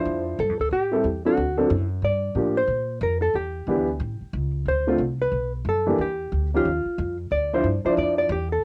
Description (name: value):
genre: jazz, small-group swing and bop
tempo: 182 BPM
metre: 4/4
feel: swing 62% on 8ths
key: D minor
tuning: A4 = 440 Hz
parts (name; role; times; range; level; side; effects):
- hollow-body jazz guitar; melody; 0.0-8.6 s; F4 to D5; -27 LUFS; equal; cassette tape
- dark upright piano; accompaniment; 0.0-8.3 s; D3 to D5; -25 LUFS; equal; cassette tape
- upright bass; bass; 0.0-8.6 s; A1 to Bb2; -30 LUFS; equal; none
room: light reverb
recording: home recording on cassette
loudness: -24 LUFS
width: mono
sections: 0.0-8.6 A section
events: none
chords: 0.0 Dm9; 0.7 Am7; 1.4 D7; 2.0 Gm7; 3.3 Em7; 4.0 A7; 4.7 Dm7; 5.3 B5; 6.0 Dmadd11; 6.6 Ebsus2; 7.3 Dmadd9